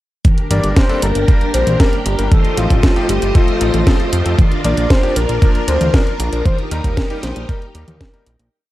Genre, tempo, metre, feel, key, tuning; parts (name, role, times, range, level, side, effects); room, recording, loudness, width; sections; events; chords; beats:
italo disco; 116 BPM; 4/4; straight; G minor; A4 = 440 Hz
string machine, full ensemble; sustained chords; 0.2-8.5 s; A3 to Eb5; -22 LUFS; equal; ensemble chorus
electronic kick drum; drums; 0.2-8.1 s; -13 LUFS; equal; overdrive
house drum kit; drums; 0.2-8.5 s; hi-hat, snare drum, toms; -21 LUFS; equal; overdrive
soft octave-layered synth lead; melody; 0.5-8.3 s; F4 to D5; -21 LUFS; left 1 dB; chorus
bright electric grand piano; stabs; 0.5-8.3 s; F3 to Bb4; -26 LUFS; left 3 dB
fat analog bass; bass; 0.5-8.5 s; G1 to F2; -18 LUFS; equal; tube saturation
little or no reverb; dry, gritty hardware recording, transformer saturation; -12 LUFS; side -16 dB against mid
0.2-8.5 verse
fade-out 5.8-8.5
0.2 Gm; 2.3 F7; 4.4 Bb; 6.5 Eb
| 0.25 0.77 1.28 1.80 | 2.32 2.83 3.35 3.87 | 4.39 4.90 5.42 5.94 | 6.46 6.97 7.49 8.01